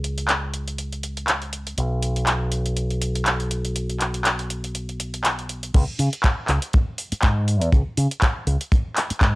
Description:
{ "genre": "nu-disco, nu disco", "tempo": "121 BPM", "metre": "4/4", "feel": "swing 56% on 16ths", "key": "unclear", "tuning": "A4 = 439 Hz", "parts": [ { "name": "fingered electric bass with an envelope filter", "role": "bass", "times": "0.0-9.4 s", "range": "B1 to C#3", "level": "-24 LUFS", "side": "equal", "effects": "none" }, { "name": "pop drum kit", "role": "drums", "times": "0.0-9.3 s", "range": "crash cymbal, handclaps, hi-hat", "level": "-24 LUFS", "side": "equal", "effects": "cassette tape" }, { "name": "kick drum", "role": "drums", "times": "5.7-9.3 s", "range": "none", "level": "-18 LUFS", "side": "equal", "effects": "cassette tape" } ], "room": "little or no reverb", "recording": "home recording on cassette", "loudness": "-20 LUFS", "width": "side -22 dB against mid", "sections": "0.0-5.7 A section; 5.7-9.4 B section", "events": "drop 5.7-9.4", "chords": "none", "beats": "0.29 0.79 1.28 | 1.78 2.27 2.77 3.27 | 3.76 4.26 4.75 5.25 | 5.75 6.24 6.74 7.23 | 7.73 8.22 8.72 9.22" }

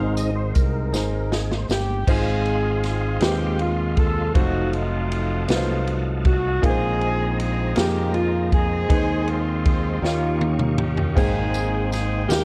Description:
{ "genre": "slow gospel", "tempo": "53 BPM (dotted quarters)", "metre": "6/8", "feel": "straight", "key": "Ab major", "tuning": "A4 = 440 Hz", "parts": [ { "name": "clear grand piano", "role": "accompaniment", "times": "0.0-12.4 s", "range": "Ab2 to G5", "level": "-30 LUFS", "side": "equal", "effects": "none" }, { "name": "dark French horn section", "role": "sustained chords", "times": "0.0-2.0 s", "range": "Eb3 to Eb4", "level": "-38 LUFS", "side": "equal", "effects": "none" }, { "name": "tonewheel organ", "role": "sustained chords", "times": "0.0-12.4 s", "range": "Ab3 to Db6", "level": "-35 LUFS", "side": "equal", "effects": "fast rotary speaker, chorus vibrato" }, { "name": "fingered electric bass", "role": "bass", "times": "0.0-12.4 s", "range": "F1 to F2", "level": "-27 LUFS", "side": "equal", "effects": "none" }, { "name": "swinging big-band drum kit", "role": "drums", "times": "0.2-12.4 s", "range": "crash cymbal, hi-hat, kick drum, ride cymbal, snare drum, toms", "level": "-25 LUFS", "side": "equal", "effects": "none" }, { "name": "tambourine", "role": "percussion", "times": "0.2-2.1, 11.5-12.4 s", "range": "none", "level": "-38 LUFS", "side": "equal", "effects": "none" }, { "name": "warm horn section", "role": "melody", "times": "1.7-12.4 s", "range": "Ab3 to A4", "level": "-28 LUFS", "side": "equal", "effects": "slapback echo" } ], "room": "studio reverb", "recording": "worn, warbling old tape, cassette tape, warbly pitch drift", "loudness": "-22 LUFS", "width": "mono", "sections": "0.0-2.1 A section; 2.1-12.4 B section", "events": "tonewheel organ solo 0.0-2.1; drum fill 0.9-2.1, 10.0-11.2", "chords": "0.0 Ab; 2.1 Ab6; 4.4 F7b9; 6.6 Bb9sus4; 8.9 Ab/Eb; 10.0 Eb9; 11.2 Abmaj9", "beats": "0.94 | 2.08 3.22 | 4.35 5.49 | 6.63 7.76 | 8.90 10.03 | 11.17 12.30" }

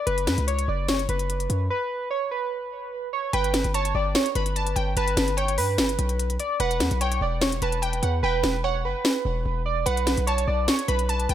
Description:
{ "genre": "hip hop, trap", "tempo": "147 BPM", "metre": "4/4", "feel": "half-time", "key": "unclear", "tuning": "A4 = 440 Hz", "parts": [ { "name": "warbly lo-fi synth keys", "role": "melody", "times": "0.0-11.3 s", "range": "B4 to D5", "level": "-26 LUFS", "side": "right 2 dB", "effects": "chorus, digital delay" }, { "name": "hard-hitting 808-style bass", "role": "bass", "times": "0.1-11.3 s", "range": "E1 to G2", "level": "-26 LUFS", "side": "equal", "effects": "none" }, { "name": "trap drum kit", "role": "drums", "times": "0.1-11.3 s", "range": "hi-hat, snare drum", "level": "-26 LUFS", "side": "left 1 dB", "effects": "none" }, { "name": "glassy wavetable pluck", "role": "second line", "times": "3.3-11.3 s", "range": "F#5 to B5", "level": "-32 LUFS", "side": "right 1 dB", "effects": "chorus, digital delay" } ], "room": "light reverb, digital ambience", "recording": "faint mains hum", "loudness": "-22 LUFS", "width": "side -11 dB against mid", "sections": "0.0-3.3 A section; 3.3-11.3 B section", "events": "break 0.1-3.3; hi-hats muted 8.2-9.9", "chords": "0.1 F#5; 3.3 Gadd9; 6.6 Emadd9; 9.9 B7(no3)", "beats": "| 0.07 0.48 0.89 1.29 | 1.70 2.11 2.52 2.92 | 3.33 3.74 4.15 4.56 | 4.97 5.37 5.78 6.19 | 6.60 7.01 7.42 7.82 | 8.23 8.64 9.05 9.46 | 9.86 10.27 10.68 11.09" }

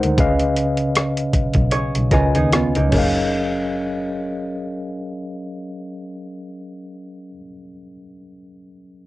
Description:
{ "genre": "R&B, neo-soul", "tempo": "71-80 BPM", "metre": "4/4", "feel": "swing 57% on 16ths", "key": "F# major", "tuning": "A4 = 440 Hz", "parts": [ { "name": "tine electric piano", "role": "accompaniment", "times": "0.0-9.1 s", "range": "C#3 to G#5", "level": "-22 LUFS", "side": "left 1 dB", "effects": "medium stereo tremolo" }, { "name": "warm double bass", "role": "bass", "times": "0.0-7.4 s", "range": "F#1 to D#2", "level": "-22 LUFS", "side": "equal", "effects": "none" }, { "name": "dusty soul sampler-style drum kit", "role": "drums", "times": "0.0-3.1 s", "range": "crash cymbal, hi-hat, kick drum, rim click", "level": "-21 LUFS", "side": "equal", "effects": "overdrive" }, { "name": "vintage hollow-body jazz guitar", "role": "second line", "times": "1.7-3.3 s", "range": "A#3 to C#5", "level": "-24 LUFS", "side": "right 3 dB", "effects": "none" } ], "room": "light reverb", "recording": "worn, warbling old tape, cassette tape, warbly pitch drift", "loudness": "-17 LUFS", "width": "side -17 dB against mid", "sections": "0.0-3.3 A section; 3.3-6.7 B section", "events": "slowing down 0.0-3.3", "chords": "0.2 C#9; 2.9 F#maj13", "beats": "| 0.18 0.94 1.72 2.52 | 3.34 4.18 5.02 5.86" }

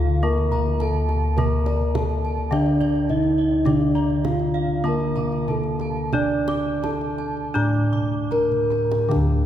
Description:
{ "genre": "Javanese gamelan", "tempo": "73-105 BPM", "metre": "4/4", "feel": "straight", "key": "D pelog", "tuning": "A4 = 439 Hz", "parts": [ { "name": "gamelan-type bronze metallophone", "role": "melody", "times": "0.0-9.5 s", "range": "D4 to D5", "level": "-24 LUFS", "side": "equal", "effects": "none" }, { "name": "gamelan-type bronze metallophone", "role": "accompaniment", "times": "0.0-9.5 s", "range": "D3 to D4", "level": "-26 LUFS", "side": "equal", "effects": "none" }, { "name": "gamelan-type bronze metallophone", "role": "arpeggios", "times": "0.0-9.1 s", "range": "D5 to D6", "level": "-33 LUFS", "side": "right 5 dB", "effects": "none" }, { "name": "gamelan-type bossed gongs", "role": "bass", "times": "0.0-9.5 s", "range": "D2 to D5", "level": "-24 LUFS", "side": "left 1 dB", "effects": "none" }, { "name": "kendang", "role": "percussion", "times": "0.1-9.4 s", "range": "none", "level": "-31 LUFS", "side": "right 4 dB", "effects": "none" }, { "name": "gamelan-type bossed gongs", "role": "arpeggios", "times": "0.2-9.5 s", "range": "D5 to D6", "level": "-35 LUFS", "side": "left 4 dB", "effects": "none" } ], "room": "wet cathedral reverb, RT60 5.0 s", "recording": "recorded in a church or concert hall", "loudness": "-19 LUFS", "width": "side -11 dB against mid", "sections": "0.0-9.1 A section", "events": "drum fill 8.5-9.1", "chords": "none", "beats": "0.23 0.80 | 1.37 1.94 2.52 3.09 | 3.66 4.24 4.85 5.48 | 6.14 6.83 7.55 8.31 | 9.11" }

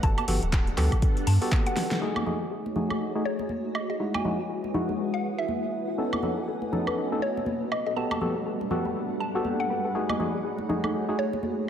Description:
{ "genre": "deep house", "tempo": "121 BPM", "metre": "4/4", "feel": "swing 59% on 16ths", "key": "F# dorian", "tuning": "A4 = 438 Hz", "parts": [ { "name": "mallet-like synth pluck", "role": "melody", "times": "0.0-11.4 s", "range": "C#5 to A5", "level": "-33 LUFS", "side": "equal", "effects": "chorus, phaser, diffuse ambient delay" }, { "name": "soft string machine", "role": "sustained chords", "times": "0.0-11.7 s", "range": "G3 to D#6", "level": "-33 LUFS", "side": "left 1 dB", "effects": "phaser, ensemble chorus, sidechain pumping" }, { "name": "percussive organ stab", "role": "stabs", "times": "0.0-11.2 s", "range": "G#3 to A4", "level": "-31 LUFS", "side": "equal", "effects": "chorus, sidechain pumping, diffuse ambient delay" }, { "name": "round analog bass", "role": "bass", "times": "0.0-1.4 s", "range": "D1 to G2", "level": "-24 LUFS", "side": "equal", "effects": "sidechain pumping" }, { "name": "deep house drum kit", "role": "drums", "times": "0.0-10.9 s", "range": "handclaps, hi-hat, snare drum, woodblock", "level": "-34 LUFS", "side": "right 1 dB", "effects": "none" }, { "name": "electronic kick drum", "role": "drums", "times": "0.0-1.6 s", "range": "none", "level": "-24 LUFS", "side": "equal", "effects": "none" }, { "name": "congas", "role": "percussion", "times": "0.2-11.5 s", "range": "none", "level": "-34 LUFS", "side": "equal", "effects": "none" }, { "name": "soft round pluck", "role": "arpeggios", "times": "2.0-10.9 s", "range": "D#4 to D#5", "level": "-37 LUFS", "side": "left 3 dB", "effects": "none" }, { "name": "granular cloud pad", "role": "texture", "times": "2.7-11.7 s", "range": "G3 to B5", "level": "-36 LUFS", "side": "equal", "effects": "built-in reverb, wide subtle chorus, sidechain pumping" } ], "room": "wet plate reverb, RT60 1.9 s, digital ambience", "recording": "dreamy mix soaked in reverb", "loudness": "-25 LUFS", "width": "side -9 dB against mid", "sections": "0.0-2.0 A section; 2.0-11.7 B section", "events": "drum fill 1.8; band accent 1.9; filter sweep on synth stab 2.0-11.7; filter sweep on string machine 2.0-11.7", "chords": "0.0 Gmaj9; 2.0 F#m69; 4.0 Emaj9; 6.0 B9; 8.0 Gmaj9; 9.9 F#m69", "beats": "| 0.03 0.53 1.02 1.52 | 2.01 2.51 3.01 3.50 | 4.00 4.49 4.99 5.49 | 5.98 6.48 6.97 7.47 | 7.96 8.46 8.96 9.45 | 9.95 10.44 10.94 11.44" }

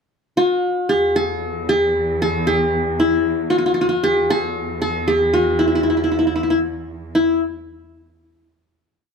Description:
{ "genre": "Arabic maqam ensemble", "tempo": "115 BPM", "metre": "3/4", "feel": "straight", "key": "unclear", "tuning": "A4 = 440 Hz", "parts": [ { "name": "qanun", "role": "melody", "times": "0.4-7.4 s", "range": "E4 to A4-40c", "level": "-17 LUFS", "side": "left 1 dB", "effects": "none" }, { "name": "rich symphonic cello section", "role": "drone", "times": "0.9-7.2 s", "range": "E2", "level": "-27 LUFS", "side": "right 2 dB", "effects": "none" } ], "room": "light reverb", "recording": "close, detailed microphones", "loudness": "-16 LUFS", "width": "side -6 dB against mid", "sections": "0.0-0.9 pickup bar; 0.9-7.2 A section; 7.2-8.7 final note", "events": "none", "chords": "none", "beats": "0.36 | 0.89 1.41 1.94 | 2.46 2.99 3.51 | 4.03 4.55 5.08 | 5.60 6.12 6.64 | 7.16" }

